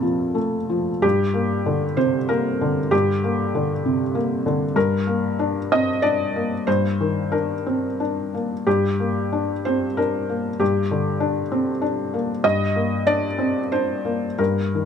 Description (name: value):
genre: neoclassical minimalist piano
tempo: 86-99 BPM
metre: 3/4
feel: rubato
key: G minor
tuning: A4 = 441 Hz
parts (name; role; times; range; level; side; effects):
- felt-muted upright piano; solo; 0.0-14.9 s; F2 to A5; -19 LUFS; left 1 dB; none
room: little or no reverb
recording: close, detailed microphones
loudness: -19 LUFS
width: side -7 dB against mid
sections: 0.0-1.0 A section; 1.0-14.9 B section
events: none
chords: 0.0 F; 1.0 Gm; 4.8 Ebmaj7/G; 8.7 Gm; 12.4 Ebmaj7/G